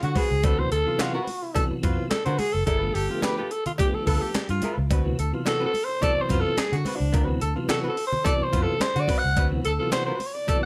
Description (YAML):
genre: funk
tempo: 108 BPM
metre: 4/4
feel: straight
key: D mixolydian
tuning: A4 = 438 Hz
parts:
  - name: growling alto saxophone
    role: melody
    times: 0.0-10.7 s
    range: D4 to F#5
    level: -29 LUFS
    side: equal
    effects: plate reverb
  - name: warm tenor saxophone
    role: second line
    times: 0.0-10.6 s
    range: F4 to A4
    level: -34 LUFS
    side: equal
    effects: none
  - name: archtop guitar, miked and amplified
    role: accompaniment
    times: 0.0-10.7 s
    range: C4 to B4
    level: -36 LUFS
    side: equal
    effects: none
  - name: vintage muted fingered electric bass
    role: bass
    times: 0.0-9.8 s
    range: F#1 to D3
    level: -29 LUFS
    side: equal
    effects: none
  - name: breakbeat sampler-style drum kit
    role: drums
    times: 0.0-10.6 s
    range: handclaps, hi-hat, kick drum, snare drum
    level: -30 LUFS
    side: equal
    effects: none
  - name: congas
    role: percussion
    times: 0.2-10.6 s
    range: none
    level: -36 LUFS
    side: equal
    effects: none
  - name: cowbell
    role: percussion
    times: 0.4-10.6 s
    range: none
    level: -40 LUFS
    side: equal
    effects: none
  - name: mellow tonewheel organ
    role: stabs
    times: 0.6-10.7 s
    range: C3 to B3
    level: -34 LUFS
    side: equal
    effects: chorus vibrato, fast rotary speaker
room: moderate studio ambience, RT60 0.5 s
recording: none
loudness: -25 LUFS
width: mono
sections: 0.0-10.7 A section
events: alto saxophone solo 0.0-10.7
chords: 0.0 D13; 2.7 G9; 4.9 D13